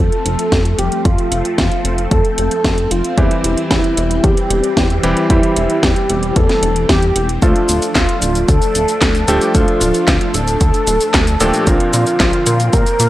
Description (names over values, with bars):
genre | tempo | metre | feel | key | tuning
italo disco | 113 BPM | 4/4 | straight | F major | A4 = 440 Hz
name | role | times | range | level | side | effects
wide unison lead | melody | 0.0-13.1 s | E4 to Bb4 | -18 LUFS | equal | tape echo
phased string machine | sustained chords | 0.0-13.1 s | D3 to D4 | -24 LUFS | equal | ensemble chorus, phaser
chorused synth bass | bass | 0.0-13.1 s | D1 to Bb2 | -18 LUFS | equal | none
house drum kit | drums | 0.1-13.1 s | cabasa, handclaps, hi-hat, snare drum | -19 LUFS | equal | small room ambience
electronic kick drum | drums | 0.5-12.8 s | none | -16 LUFS | equal | small room ambience
clear electric grand piano | stabs | 3.2-13.1 s | Bb2 to Bb4 | -21 LUFS | equal | none
room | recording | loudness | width
light reverb, digital ambience | dry, gritty hardware recording | -12 LUFS | side -15 dB against mid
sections
0.0-13.1 A section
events
none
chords
0.0 F; 3.2 C/E; 7.4 Dm; 11.7 Bbadd9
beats
0.52 | 1.05 1.58 2.11 2.65 | 3.18 3.71 4.24 4.77 | 5.30 5.83 6.36 6.89 | 7.42 7.96 8.49 9.02 | 9.55 10.08 10.61 11.14 | 11.67 12.20 12.73